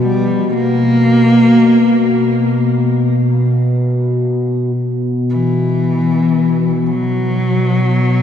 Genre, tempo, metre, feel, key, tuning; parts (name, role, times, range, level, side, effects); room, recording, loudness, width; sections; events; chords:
dark ambient drone; free time; A4 = 440 Hz
dark cello; melody; 0.0-8.2 s; E3 to A#3; -14 LUFS; left 1 dB; shimmer reverb, tape echo
analog drone; drone; 0.0-8.2 s; B2; -14 LUFS; equal; chorus
wet cathedral reverb, RT60 6.6 s; -11 LUFS; side -9 dB against mid
0.0-4.8 A section; 4.8-8.2 B section